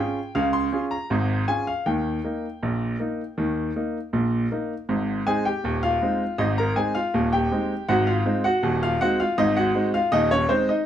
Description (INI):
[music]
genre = ragtime piano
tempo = 80 BPM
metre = 2/4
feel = straight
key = Ab major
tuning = A4 = 439 Hz
[part]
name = clear grand piano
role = solo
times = 0.0-10.9 s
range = Eb1 to C6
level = -21 LUFS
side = equal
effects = none
[sound]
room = moderate studio reverb, RT60 0.7 s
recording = none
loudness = -21 LUFS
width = side -10 dB against mid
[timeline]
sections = 0.0-4.9 A section; 4.9-10.9 A section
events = none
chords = 0.0 Db; 1.9 Eb; 4.9 Ab; 7.9 Ab7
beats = | 0.35 1.10 | 1.86 2.62 | 3.37 4.13 | 4.89 5.64 | 6.39 7.14 | 7.89 8.63 | 9.38 10.13